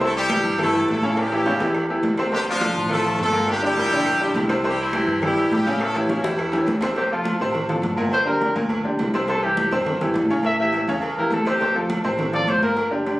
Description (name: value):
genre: latin, salsa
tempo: 207 BPM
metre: 4/4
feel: straight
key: D minor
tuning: A4 = 440 Hz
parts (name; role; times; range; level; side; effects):
- bright horn section; melody; 0.0-6.8 s; E3 to A4; -22 LUFS; equal; none
- bright upright piano; accompaniment; 0.0-13.2 s; Bb2 to C#5; -23 LUFS; equal; none
- upright bass; bass; 0.0-13.1 s; G1 to A2; -29 LUFS; equal; none
- agogo bells and timbales; percussion; 0.0-13.2 s; none; -29 LUFS; right 1 dB; none
- congas; percussion; 0.0-13.2 s; none; -29 LUFS; equal; none
- cowbell and bongos; percussion; 0.0-13.2 s; none; -32 LUFS; left 1 dB; none
- claves; percussion; 0.3-7.0 s; none; -37 LUFS; equal; none
- warm trumpet; melody; 7.0-12.9 s; F4 to E5; -22 LUFS; equal; none
room: moderate studio reverb, RT60 0.6 s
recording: recorded on a phone in the room, studio reverb, compression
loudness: -19 LUFS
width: side -17 dB against mid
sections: 0.0-7.0 A section; 7.0-13.2 B section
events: drum fill 1.2-2.3, 6.1-7.0; trumpet solo 7.0-13.2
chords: 0.0 C; 1.2 A7; 2.3 Dm7; 3.5 Gm; 4.6 C; 5.8 A7; 7.0 Dm7; 8.1 Gm; 9.3 C; 10.4 A7; 11.6 Dm7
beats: | 0.01 0.30 0.59 0.88 | 1.17 1.46 1.75 2.04 | 2.33 2.62 2.90 3.19 | 3.48 3.77 4.06 4.35 | 4.64 4.93 5.22 5.51 | 5.80 6.09 6.38 6.67 | 6.96 7.25 7.54 7.83 | 8.12 8.41 8.70 8.99 | 9.28 9.57 9.86 10.15 | 10.44 10.73 11.03 11.32 | 11.61 11.90 12.19 12.48 | 12.77 13.06